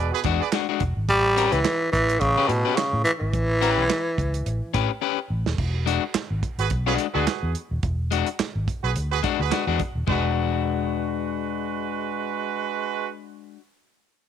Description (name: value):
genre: funk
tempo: 107 BPM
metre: 4/4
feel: swing 56% on 16ths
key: E mixolydian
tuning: A4 = 443 Hz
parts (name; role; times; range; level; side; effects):
- growling tenor saxophone; melody; 0.0-4.8 s; B2 to G3; -22 LUFS; equal; none
- warm horn section; second line; 0.0-0.5, 6.6-13.1 s; G#3 to D5; -28 LUFS; right 12 dB; none
- vintage muted fingered electric bass; bass; 0.0-13.1 s; D#1 to A2; -26 LUFS; equal; none
- electric guitar at the edge of break-up; accompaniment; 0.2-13.6 s; G#3 to B4; -26 LUFS; left 14 dB; none
- warm soul drum kit; drums; 0.2-10.2 s; crash cymbal, handclaps, hi-hat, kick drum, snare drum, toms; -28 LUFS; right 4 dB; none
room: small room ambience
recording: 1960s-style stereo with parts hard left and right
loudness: -22 LUFS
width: side -9 dB against mid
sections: 0.0-5.6 A section; 5.6-10.1 B section; 10.1-12.3 C section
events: drum fill 5.0-5.6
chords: 0.0 E9; 1.1 A9; 5.6 E9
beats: 0.53 | 1.09 1.65 2.21 2.77 | 3.34 3.90 4.46 5.02 | 5.58 6.15 6.71 7.27 | 7.83 8.39 8.95 9.51 | 10.08 10.64 11.20 11.76